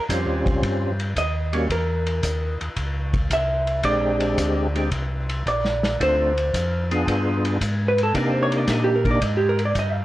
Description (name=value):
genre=soul jazz organ trio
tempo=112 BPM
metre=4/4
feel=swing 69% on 8ths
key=unclear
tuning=A4 = 440 Hz
part: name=vintage hollow-body jazz guitar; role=accompaniment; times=0.0-10.0 s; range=G4 to F5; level=-23 LUFS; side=right 1 dB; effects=none
part: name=percussive tonewheel organ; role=melody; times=0.1-9.2 s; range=G3 to Ab4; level=-24 LUFS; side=equal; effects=slow rotary speaker, overdrive, chorus vibrato, plate reverb
part: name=tonewheel organ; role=bass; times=0.1-10.0 s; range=Bb1 to C3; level=-24 LUFS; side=equal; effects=overdrive, slow rotary speaker
part: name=vintage drum kit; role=drums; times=0.1-9.9 s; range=hi-hat, kick drum, ride cymbal, snare drum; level=-28 LUFS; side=equal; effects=none
room=light reverb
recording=worn, warbling old tape, cassette tape, warbly pitch drift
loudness=-20 LUFS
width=side -15 dB against mid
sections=0.0-10.0 A section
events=hollow-body jazz guitar solo 0.0-10.0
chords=0.0 Eb13; 1.7 C7b9; 3.8 Bb13; 6.0 Dm7; 7.1 G7b9; 8.1 Cm7